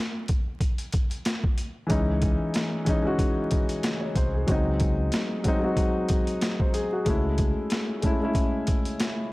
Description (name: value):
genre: hip hop, boom-bap hip-hop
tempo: 93 BPM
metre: 4/4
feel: swing 54% on 16ths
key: C# harmonic minor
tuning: A4 = 440 Hz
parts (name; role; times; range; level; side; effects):
- boom bap sampler-style drum kit; drums; 0.3-9.2 s; hi-hat, kick drum, snare drum; -26 LUFS; equal; overdrive
- dark concert grand piano; accompaniment; 1.9-9.3 s; E3 to C#5; -26 LUFS; left 1 dB; none
- deep dub fingered electric bass; bass; 1.9-7.5 s; B#1 to C#2; -27 LUFS; equal; tube saturation
room: digital ambience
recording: dry, gritty hardware recording, vinyl crackle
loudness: -23 LUFS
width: side -21 dB against mid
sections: 0.0-9.3 A section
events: break 0.0-1.9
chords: 0.0 N.C.; 1.9 C#madd9; 4.5 G#7/C#; 7.1 F#m9 (rootless)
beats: 0.61 1.26 | 1.90 2.55 3.19 3.84 | 4.48 5.13 5.77 6.42 | 7.06 7.71 8.35 9.00